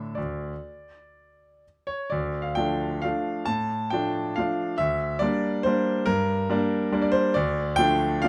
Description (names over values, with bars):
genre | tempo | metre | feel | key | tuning
classical, piano waltz | 116-150 BPM | 3/4 | rubato | D minor | A4 = 440 Hz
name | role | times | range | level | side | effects
clear grand piano | solo | 0.0-8.3 s | D2 to A5 | -26 LUFS | equal | none
room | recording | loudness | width
light reverb | close, detailed microphones | -26 LUFS | mono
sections
0.0-2.1 A section; 2.1-8.3 A section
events
none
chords
0.0 D5; 2.1 Dm; 4.8 Gm/D; 7.4 Dm